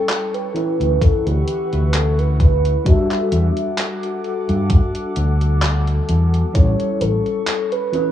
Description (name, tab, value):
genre	vaporwave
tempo	65 BPM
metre	4/4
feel	swing 54% on 16ths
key	E dorian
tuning	A4 = 440 Hz
part	warm velvety synth lead	melody	0.0-8.1 s	G4 to E5	-24 LUFS	equal	chorus, cassette tape, tape echo
part	mellow FM electric piano	accompaniment	0.0-8.1 s	E3 to B4	-24 LUFS	equal	ensemble chorus, cassette tape, tape echo
part	warbly tape-like pad	sustained chords	0.0-8.1 s	A4 to D6	-31 LUFS	left 2 dB	chorus, built-in reverb, cassette tape
part	detuned 8-bit digital drum machine	drums	0.1-8.1 s	handclaps, hi-hat	-26 LUFS	equal	overdrive, cassette tape
part	fretless electric bass	bass	0.8-7.2 s	A1 to G2	-17 LUFS	equal	none
part	electronic kick drum	drums	1.0-6.8 s	none	-14 LUFS	equal	overdrive, cassette tape
room	light reverb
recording	home recording on cassette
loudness	-16 LUFS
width	side -11 dB against mid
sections	0.0-8.1 A section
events	none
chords	0.0 A7; 0.6 Dmaj13; 2.9 Em11; 6.5 A7